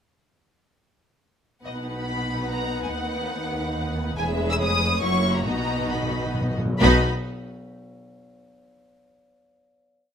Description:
classical, dramatic, fast romantic movement for symphony orchestra; 132-144 BPM; 3/4; straight; B major; A4 = 440 Hz
rich symphonic viola section; accompaniment; 1.6-7.1 s; G#3 to G#4; -29 LUFS; equal
dark symphonic cello section; bass; 1.6-7.1 s; D#2 to B2; -28 LUFS; right 1 dB
rich symphonic double bass section; bass; 1.6-7.1 s; E1 to D#2; -29 LUFS; right 1 dB
warm symphonic violin section; melody; 1.7-7.1 s; D#5 to E6; -28 LUFS; left 2 dB
warm symphonic violin section; second line; 1.7-7.1 s; F#4 to F#5; -30 LUFS; left 1 dB
timpani; percussion; 5.5-7.0 s; B2; -29 LUFS; equal
light reverb; close, detailed microphones; -22 LUFS; side -8 dB against mid
1.7-6.8 A section; 6.8-8.1 final chord
timpani fill 5.5-6.8
1.7 B; 2.9 B/D#; 4.2 E; 4.6 C#7/E#; 5.0 F#7; 5.5 B

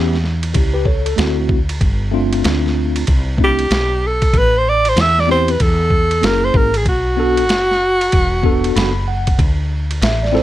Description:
hip hop, jazz-hop; 95 BPM; 4/4; swing 62% on 16ths; A4 = 440 Hz
tine electric piano; accompaniment; 0.0-10.4 s; A3 to B5; -19 LUFS; left 1 dB; medium stereo tremolo
woody fretless electric bass; bass; 0.0-10.4 s; E1 to E2; -18 LUFS; equal; wide subtle chorus
boom bap sampler-style drum kit; drums; 0.1-10.4 s; hi-hat, kick drum, ride cymbal, snare drum; -19 LUFS; equal
breathy alto saxophone; melody; 3.4-9.0 s; F#4 to E5; -15 LUFS; equal
vibraphone with soft mallets; second line; 10.0-10.4 s; C5 to E5; -18 LUFS; right 2 dB
light reverb; -13 LUFS; side -14 dB against mid
0.0-10.4 A section
tine electric piano fill 8.4-9.4
0.0 A7; 1.2 D9; 1.8 G9sus4; 4.3 Am9; 6.2 F#7; 6.9 Bm7; 9.4 D5

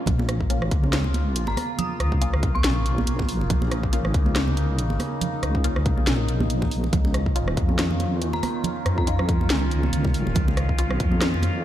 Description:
deep dubstep; 140 BPM; 4/4; swing 56% on 16ths, half-time; Bb minor; A4 = 440 Hz
overtone-sweeping drone; sustained chords; 0.2-11.6 s; Db3 to F4; -30 LUFS; right 1 dB; chorus, built-in reverb
deep soft wobble bass; bass; 0.1-11.6 s; Bb1 to F2; -24 LUFS; equal; chorus
electronic kick drum; drums; 0.1-11.1 s; -24 LUFS; equal; overdrive
garage drum kit; drums; 0.1-11.5 s; hi-hat, rim click, snare drum; -29 LUFS; equal; overdrive
congas; percussion; 0.1-11.5 s; -31 LUFS; right 4 dB; dub echo
filtered dub chord stab; stabs; 0.5-10.9 s; Bb3 to F4; -36 LUFS; left 3 dB
dark detuned synth bell; melody; 1.5-2.9, 8.3-9.3 s; Bb5 to Eb6; -34 LUFS; left 1 dB; chorus, dub echo
light reverb, digital ambience; -20 LUFS; side -12 dB against mid
0.1-11.6 A section
drop 0.1-11.6
0.1 Bbm; 6.9 Dbadd9

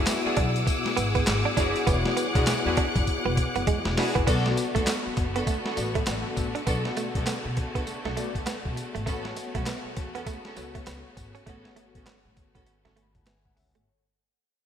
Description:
R&B, new jack swing; 100 BPM; 4/4; swing 61% on 16ths; B dorian; A4 = 439 Hz
bell-like tine electric piano; accompaniment; 0.0-14.0 s; B3 to B5; -32 LUFS; left 5 dB; ensemble chorus
clear studio string section; sustained chords; 0.0-13.8 s; C#3 to F#6; -33 LUFS; equal
warm symphonic string section; stabs; 0.0-12.9 s; B3 to A4; -34 LUFS; right 1 dB; ping-pong delay
upright bass; bass; 0.0-13.8 s; E1 to B2; -31 LUFS; equal
boom bap sampler-style drum kit; drums; 0.1-13.9 s; crash cymbal, handclaps, hi-hat, kick drum, snare drum, tambourine; -28 LUFS; equal; gated reverb
direct-recorded clean electric guitar; riff; 0.4-13.8 s; G#3 to D4; -33 LUFS; right 7 dB; analog chorus
moderate lush hall reverb, RT60 1.9 s; bright 1980s-style digital production, faint mains hum; -24 LUFS; side -9 dB against mid
0.0-4.3 A section; 4.3-13.9 B section
drum fill 3.1-4.3; fade-out 4.3-13.9
0.0 E9; 4.3 Bm7; 9.1 A69

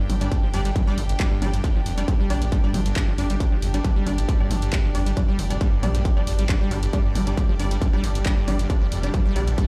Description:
driving peak-time techno; 136 BPM; 4/4; straight; A4 = 440 Hz
acid bass, saw; riff; 0.0-9.7 s; G1 to Bb3; -32 LUFS; equal; sidechain pumping
clear studio string section; texture; 0.0-9.7 s; D4 to G5; -37 LUFS; equal; sidechain pumping
detuned saw bass; bass; 0.1-9.5 s; F1 to Bb1; -26 LUFS; equal; sidechain pumping
punchy analog drum machine; drums; 0.1-9.7 s; handclaps, hi-hat, toms; -34 LUFS; equal
rave stab; stabs; 0.2-9.4 s; G3 to D5; -35 LUFS; equal; chorus, built-in reverb, sidechain pumping, dub echo
electronic kick drum; drums; 0.3-9.7 s; -24 LUFS; equal; distortion, overdrive
swarming drone; drone; 4.2-9.7 s; G2 to G3; -38 LUFS; equal
digital ambience; played on a big sound system in a bare room, large studio reverb; -22 LUFS; mono
0.0-9.7 A section
0.0 G5

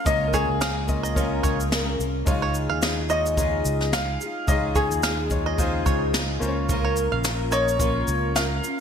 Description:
acoustic pop; 108 BPM; 4/4; swing 55% on 16ths; Db major; A4 = 440 Hz
clear upright piano; melody; 0.0-8.8 s; Ab4 to F5; -27 LUFS; left 2 dB; lush chorus
fingerpicked twelve-string acoustic guitar; accompaniment; 0.0-8.8 s; Db3 to Bb4; -28 LUFS; equal; double-tracked left and right
warm grand piano; accompaniment; 0.0-8.8 s; Ab3 to Eb5; -32 LUFS; left 2 dB
fingered electric bass with an envelope filter; bass; 0.1-8.6 s; Bb1 to Eb2; -27 LUFS; equal
jazz brush drum kit; drums; 0.1-8.8 s; kick drum, shaker, snare drum; -26 LUFS; equal; gated reverb
bluegrass banjo; arpeggios; 0.3-7.7 s; Db5 to F5; -31 LUFS; right 6 dB
light reverb, studio ambience; bright 1980s-style digital production; -21 LUFS; side -7 dB against mid
0.0-8.8 A section
0.0 Bbm/Db; 2.3 Dbadd9; 6.4 Bbm

